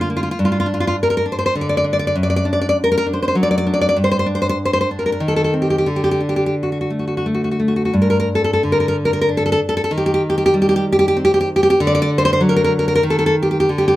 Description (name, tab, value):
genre	romantic piece for solo classical guitar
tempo	81-104 BPM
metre	3/4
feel	rubato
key	G minor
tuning	A4 = 438 Hz
part	nylon-string guitar	solo	0.0-14.0 s	F#2 to D5	-15 LUFS	equal	none
room	light reverb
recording	none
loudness	-15 LUFS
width	side -16 dB against mid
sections	0.0-7.9 A section; 7.9-14.0 B section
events	none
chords	0.4 G5; 2.1 D/F#; 4.0 G5; 5.2 Cm/Eb; 5.9 D5; 7.9 G5; 9.9 Cm/Eb; 11.8 D; 13.0 N.C.